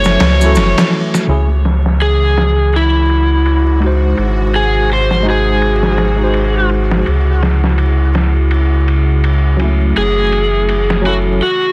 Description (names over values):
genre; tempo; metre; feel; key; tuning
trip hop; 83 BPM; 4/4; swing 58% on 16ths; C# harmonic minor; A4 = 439 Hz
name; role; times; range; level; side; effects
overdriven slide guitar; melody; 0.0-11.7 s; E4 to C#5; -19 LUFS; equal; tape echo
tine electric piano; accompaniment; 0.0-11.4 s; C#3 to B#4; -21 LUFS; equal; overdrive, tremolo, vintage 12-bit sampler grit
warbly tape-like pad; sustained chords; 0.0-11.4 s; B#2 to G#4; -26 LUFS; equal; chorus, built-in reverb
warm sub bass; bass; 0.0-11.4 s; F#1 to C#2; -16 LUFS; equal; none
maracas; percussion; 0.0-1.3 s; none; -31 LUFS; equal; none
trip hop sampler-style drum kit; drums; 0.1-11.2 s; ride cymbal, snare drum; -23 LUFS; equal; low-pass filter on cymbals, small room ambience, low-pass filter on kick, soft clipping on snare, low-pass filter on snare
bowed-like drone; texture; 3.0-11.4 s; F#4; -31 LUFS; equal; built-in reverb
room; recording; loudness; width
little or no reverb; dense, heavily limited modern master, vinyl crackle; -13 LUFS; mono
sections
0.0-1.3 A section; 1.3-11.7 B section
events
filter sweep on ambient pad 1.3-11.7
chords
0.0 F#m7; 1.3 C#m; 4.2 G#7; 7.1 C#m; 10.0 F#m7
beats
0.56 | 1.28 2.01 2.73 3.45 | 4.18 4.90 5.62 6.35 | 7.07 7.79 8.51 9.24 | 9.96 10.68 11.41